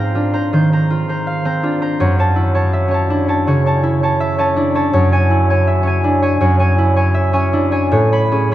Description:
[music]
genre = classical, solo harp piece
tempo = 81 BPM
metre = 4/4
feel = rubato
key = E mixolydian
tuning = A4 = 440 Hz
[part]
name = concert harp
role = solo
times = 0.0-8.5 s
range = F#2 to B5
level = -13 LUFS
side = equal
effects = none
[sound]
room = wet cathedral reverb, RT60 6.6 s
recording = dark, warm production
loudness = -13 LUFS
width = side -13 dB against mid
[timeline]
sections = 0.0-8.5 A section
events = none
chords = 0.0 G#69; 2.0 F#m7; 4.9 E69/F#; 7.9 Amaj9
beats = 0.52 1.26 | 2.01 2.73 3.48 4.21 | 4.94 5.68 6.42 7.16 | 7.92

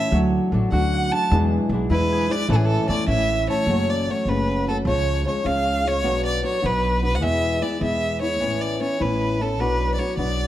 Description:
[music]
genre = mexican folk, mariachi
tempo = 102 BPM (dotted quarters)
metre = 6/8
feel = straight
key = A major, F# minor from 3.7 s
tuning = A4 = 440 Hz
[part]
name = clear violin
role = melody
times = 0.0-10.5 s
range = G#4 to A5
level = -24 LUFS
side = right 1 dB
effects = none
[part]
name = nylon-string guitar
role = accompaniment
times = 0.0-10.5 s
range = E2 to F#4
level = -25 LUFS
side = left 2 dB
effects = none
[part]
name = Celtic harp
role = arpeggios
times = 0.0-5.8 s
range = E3 to A5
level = -26 LUFS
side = right 1 dB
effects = none
[part]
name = upright bass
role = bass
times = 0.1-10.5 s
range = F#1 to E2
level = -24 LUFS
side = equal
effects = none
[sound]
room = moderate recital hall reverb, RT60 1.6 s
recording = dark, warm production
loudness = -19 LUFS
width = side -13 dB against mid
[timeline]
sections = 0.0-3.7 A section; 3.7-10.5 B section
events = none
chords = 0.1 D; 1.3 E7; 2.5 A; 3.7 F#m; 4.9 C#; 6.0 Bm; 7.2 E; 8.4 Aadd9; 9.6 Bm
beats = | 0.14 0.72 | 1.31 1.90 | 2.49 3.08 | 3.68 4.27 | 4.87 5.46 | 6.04 6.63 | 7.22 7.82 | 8.41 9.00 | 9.59 10.18

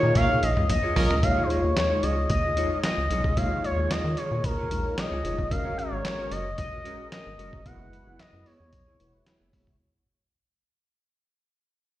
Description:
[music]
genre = early-eighties boogie funk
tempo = 112 BPM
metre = 4/4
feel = straight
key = Eb minor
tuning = A4 = 439 Hz
[part]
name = expressive portamento lead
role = melody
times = 0.0-9.5 s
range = Bb4 to Gb5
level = -28 LUFS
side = left 1 dB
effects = chorus, slapback echo
[part]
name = mellow synth brass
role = accompaniment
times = 0.0-9.7 s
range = Ab3 to Db5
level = -32 LUFS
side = left 3 dB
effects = chorus, slapback echo
[part]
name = mellow electric guitar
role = riff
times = 0.0-9.7 s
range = Cb4 to Eb5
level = -35 LUFS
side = right 2 dB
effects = lush chorus, slapback echo
[part]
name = rubbery square bass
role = bass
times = 0.0-9.8 s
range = Fb1 to Eb3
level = -28 LUFS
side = equal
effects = none
[part]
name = clear horn section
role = second line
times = 0.1-1.1 s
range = Db4 to Bb4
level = -31 LUFS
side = right 1 dB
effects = slapback echo
[part]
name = lo-fi sampler-style drum kit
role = drums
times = 0.2-9.8 s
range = handclaps, hi-hat, kick drum, snare drum, toms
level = -29 LUFS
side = equal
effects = none
[sound]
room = light reverb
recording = live gig heard through the venue's PA, recital hall reverb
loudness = -23 LUFS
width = side -14 dB against mid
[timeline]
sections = 0.0-1.2 A section; 1.2-9.8 B section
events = drum fill 0.2-1.2; fade-out 1.2-9.8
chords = 0.0 Eb9sus4; 5.5 Ab9sus4; 7.7 Gb9sus4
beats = 0.16 0.69 | 1.23 1.76 2.30 2.84 | 3.37 3.91 4.44 4.98 | 5.51 6.05 6.59 7.12 | 7.66 8.19 8.73 9.27

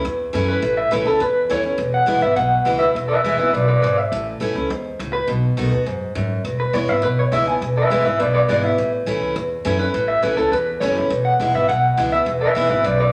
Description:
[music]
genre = rockabilly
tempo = 206 BPM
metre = 4/4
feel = straight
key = E mixolydian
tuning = A4 = 441 Hz
[part]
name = picked steel-string acoustic guitar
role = accompaniment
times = 0.0-13.1 s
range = E2 to F#4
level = -25 LUFS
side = equal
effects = none
[part]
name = upright bass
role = bass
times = 0.0-13.1 s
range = E1 to G#2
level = -26 LUFS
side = equal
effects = none
[part]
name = electric guitar through a small old amp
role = melody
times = 0.5-13.1 s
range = A4 to G#5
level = -21 LUFS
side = equal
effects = tremolo
[sound]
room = moderate large studio reverb, RT60 1.1 s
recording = faint mains hum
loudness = -19 LUFS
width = mono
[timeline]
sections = 0.0-7.6 A section; 7.6-13.1 A section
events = none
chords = 0.0 A; 1.8 E; 4.1 A; 5.3 B; 6.4 E; 8.8 A; 11.1 E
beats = 0.04 0.34 | 0.63 0.92 1.21 1.50 | 1.79 2.08 2.37 2.66 | 2.95 3.24 3.54 3.83 | 4.12 4.41 4.70 4.99 | 5.28 5.57 5.86 6.16 | 6.45 6.74 7.03 7.32 | 7.61 7.90 8.19 8.48 | 8.78 9.07 9.36 9.65 | 9.94 10.23 10.52 10.82 | 11.11 11.40 11.69 11.98 | 12.27 12.56 12.86

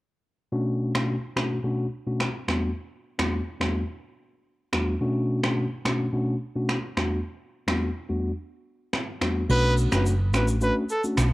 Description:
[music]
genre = afrobeats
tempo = 107 BPM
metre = 4/4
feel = straight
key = B minor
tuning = A4 = 440 Hz
[part]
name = mellow tine electric piano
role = accompaniment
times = 0.5-11.3 s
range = E2 to F#4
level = -26 LUFS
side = left 1 dB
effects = cassette tape
[part]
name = jazz brush drum kit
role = drums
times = 0.9-11.3 s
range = crash cymbal, finger snaps, rim click, shaker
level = -29 LUFS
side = right 1 dB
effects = cassette tape
[part]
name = brilliant trumpet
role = melody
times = 9.5-11.0 s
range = A4 to B4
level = -27 LUFS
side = right 1 dB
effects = analog delay
[part]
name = hollow-body short-scale fingered electric bass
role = bass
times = 9.5-11.3 s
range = F#1 to B1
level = -22 LUFS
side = equal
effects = none
[sound]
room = light reverb, small room ambience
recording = home recording on cassette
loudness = -24 LUFS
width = side -18 dB against mid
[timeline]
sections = 0.5-9.5 A section; 9.5-11.3 B section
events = kick muted 8.4-9.5, 9.5-11.3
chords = 0.5 Bm9; 2.5 Em11; 5.0 Bm9; 7.0 Em11; 9.5 Bm9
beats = | 0.52 1.08 1.64 2.20 | 2.77 3.33 3.89 4.45 | 5.01 5.57 6.13 6.69 | 7.25 7.81 8.37 8.93 | 9.49 10.05 10.62 11.18

